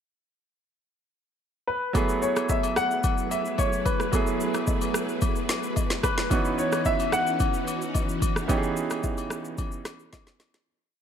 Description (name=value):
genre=amapiano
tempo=110 BPM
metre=4/4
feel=straight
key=F# minor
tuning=A4 = 440 Hz
part: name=warm grand piano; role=melody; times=1.7-10.1 s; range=B4 to F#5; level=-28 LUFS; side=left 2 dB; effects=analog chorus, ping-pong delay
part: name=bright grand piano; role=accompaniment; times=1.9-10.7 s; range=E3 to G#4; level=-30 LUFS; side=right 6 dB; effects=none
part: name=string machine, violas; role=sustained chords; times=1.9-10.6 s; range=E3 to B4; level=-33 LUFS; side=left 1 dB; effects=ensemble chorus
part: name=afro-pop drum kit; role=drums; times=1.9-10.7 s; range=kick drum, rim click, shaker, snare drum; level=-27 LUFS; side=equal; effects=overdrive, gated reverb
part: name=agogo bells and woodblock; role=percussion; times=1.9-10.5 s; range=none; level=-35 LUFS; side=left 10 dB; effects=none
room=light reverb, small room ambience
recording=bright 1980s-style digital production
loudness=-23 LUFS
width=side -8 dB against mid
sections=0.0-1.9 pickup bar; 1.9-10.7 groove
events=fade-out 8.5-10.7; drum fill 10.1-10.7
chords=0.0 N.C.; 1.9 F#m11; 6.3 C#m11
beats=0.31 0.86 1.40 | 1.95 2.49 3.04 3.58 | 4.13 4.67 5.22 5.77 | 6.31 6.86 7.40 7.95 | 8.49 9.04 9.58 10.13